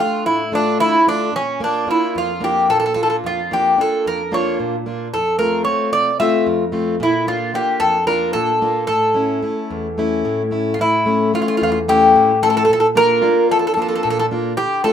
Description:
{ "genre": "greek folk, Greek bouzouki band", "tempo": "222 BPM (eighths)", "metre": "7/8", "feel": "straight", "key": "unclear", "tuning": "A4 = 440 Hz", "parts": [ { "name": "Greek bouzouki", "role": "melody", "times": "0.0-14.9 s", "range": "C#4 to E5", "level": "-16 LUFS", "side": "equal", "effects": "none" }, { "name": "picked plugged-in steel-string acoustic guitar", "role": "accompaniment", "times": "0.0-14.9 s", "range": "E2 to F4", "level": "-20 LUFS", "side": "left 1 dB", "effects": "none" } ], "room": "moderate small room reverb, RT60 0.5 s", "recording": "minimal, uncompressed stereo recording", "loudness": "-15 LUFS", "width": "side -8 dB against mid", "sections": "0.0-10.8 A section; 10.8-14.9 A section", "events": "none", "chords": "0.0 Dm; 1.3 Bb; 5.1 F; 7.0 Bb; 8.9 A; 12.7 Bb" }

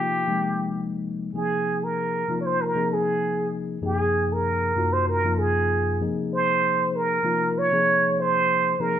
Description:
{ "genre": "jazz", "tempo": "97 BPM", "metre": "4/4", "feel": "straight", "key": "unclear", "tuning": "A4 = 440 Hz", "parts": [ { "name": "trumpet with plunger mute", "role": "melody", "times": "0.0-9.0 s", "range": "G4 to Db5", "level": "-22 LUFS", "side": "right 2 dB", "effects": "none" }, { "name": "mellow tine electric piano", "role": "accompaniment", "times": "0.0-9.0 s", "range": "Gb2 to Ab4", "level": "-26 LUFS", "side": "left 3 dB", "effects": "none" } ], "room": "moderate large studio reverb, RT60 1.2 s", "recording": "band playing live in one room", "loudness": "-21 LUFS", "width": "side -9 dB against mid", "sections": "0.0-9.0 A section", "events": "none", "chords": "0.0 Abadd9; 3.8 Gbmaj9; 6.0 Bbm9" }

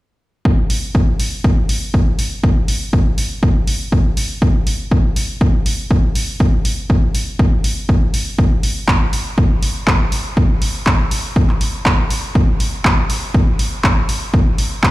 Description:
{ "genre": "progressive house", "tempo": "121 BPM", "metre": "4/4", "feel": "straight", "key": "none", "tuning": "none", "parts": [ { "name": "electronic kick drum", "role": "drums", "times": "0.5-14.9 s", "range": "none", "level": "-14 LUFS", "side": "equal", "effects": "overdrive, studio reverb" }, { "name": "deep house drum kit", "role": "drums", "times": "0.7-14.9 s", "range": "handclaps, hi-hat", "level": "-21 LUFS", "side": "equal", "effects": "overdrive, studio reverb" } ], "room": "digital ambience", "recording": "played on a big sound system in a bare room, large studio reverb", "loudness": "-14 LUFS", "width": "side -18 dB against mid", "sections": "0.5-14.9 A section", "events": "none", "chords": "none" }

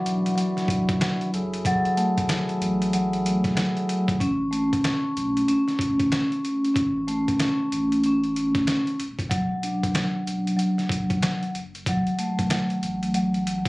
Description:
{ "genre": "hip hop, boom-bap hip-hop", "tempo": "94 BPM", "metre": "4/4", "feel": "swing 62% on 16ths", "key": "A major", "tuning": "A4 = 441 Hz", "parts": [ { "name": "vibraphone with soft mallets", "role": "accompaniment", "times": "0.0-13.7 s", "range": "F#3 to D4", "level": "-22 LUFS", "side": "equal", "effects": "cassette tape" }, { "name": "tonewheel organ", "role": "sustained chords", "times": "0.0-4.2 s", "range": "E3 to A4", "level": "-32 LUFS", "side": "equal", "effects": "stopped rotary speaker" }, { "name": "warm sub bass", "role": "bass", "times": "0.1-13.7 s", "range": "E1 to B1", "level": "-38 LUFS", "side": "equal", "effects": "none" }, { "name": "trip hop sampler-style drum kit", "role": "drums", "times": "0.1-13.7 s", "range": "hi-hat, kick drum, snare drum", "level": "-29 LUFS", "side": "equal", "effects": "none" } ], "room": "light reverb", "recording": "recorded on a phone in the room, club ambience, compression", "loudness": "-22 LUFS", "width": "side -23 dB against mid", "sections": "0.0-4.2 A section; 4.2-13.7 B section", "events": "none", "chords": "0.0 Esus2; 1.3 F#m9; 4.2 A; 9.0 Esus2; 11.5 F#m" }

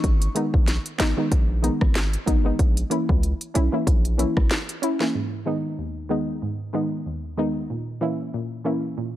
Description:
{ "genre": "dancehall", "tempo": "94 BPM", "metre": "4/4", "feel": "swing 56% on 16ths", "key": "G# minor", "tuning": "A4 = 440 Hz", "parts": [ { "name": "hard-hitting 808-style bass", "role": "bass", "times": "0.0-4.5 s", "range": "G#1 to C#2", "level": "-22 LUFS", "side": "equal", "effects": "none" }, { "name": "afro-pop drum kit", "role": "drums", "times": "0.0-5.1 s", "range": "handclaps, hi-hat, kick drum, rim click, snare drum", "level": "-22 LUFS", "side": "equal", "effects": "none" }, { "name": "soft round pluck", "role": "accompaniment", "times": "0.3-9.2 s", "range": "D#2 to E4", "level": "-25 LUFS", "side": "equal", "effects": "chorus" } ], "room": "little or no reverb", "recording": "none", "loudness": "-21 LUFS", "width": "side -13 dB against mid", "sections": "0.0-5.1 A section; 5.1-9.2 B section", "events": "none", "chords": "0.0 G#m; 2.6 A#dim; 5.1 G#m; 7.7 A#dim" }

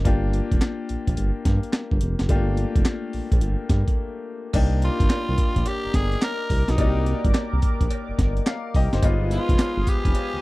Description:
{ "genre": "R&B, new jack swing", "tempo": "107 BPM", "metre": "4/4", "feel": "swing 65% on 16ths", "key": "C minor", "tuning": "A4 = 440 Hz", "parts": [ { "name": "bright grand piano", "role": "accompaniment", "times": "0.0-10.4 s", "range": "Ab3 to F5", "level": "-29 LUFS", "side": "left 4 dB", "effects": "none" }, { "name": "smooth synth bass", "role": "bass", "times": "0.0-10.4 s", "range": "F1 to G2", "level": "-23 LUFS", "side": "equal", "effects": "none" }, { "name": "breakbeat sampler-style drum kit", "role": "drums", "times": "0.1-10.3 s", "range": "crash cymbal, handclaps, hi-hat, kick drum, snare drum, tambourine", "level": "-22 LUFS", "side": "equal", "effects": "none" }, { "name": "phased analog pad", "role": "sustained chords", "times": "4.5-10.4 s", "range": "Bb4 to Eb6", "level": "-34 LUFS", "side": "equal", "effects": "phaser, chorus" }, { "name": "cowbell", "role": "percussion", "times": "4.5-10.3 s", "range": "none", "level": "-40 LUFS", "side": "right 10 dB", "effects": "none" }, { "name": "raspy tenor saxophone", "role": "melody", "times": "4.8-10.4 s", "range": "Eb4 to Bb4", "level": "-27 LUFS", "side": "equal", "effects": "none" } ], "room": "little or no reverb", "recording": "dry, close 1970s-style studio recording", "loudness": "-20 LUFS", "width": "side -20 dB against mid", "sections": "0.0-4.5 A section; 4.5-10.4 B section", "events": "break 4.0-4.5", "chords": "0.1 Gm7; 4.5 Cm9; 9.0 G7b9b13" }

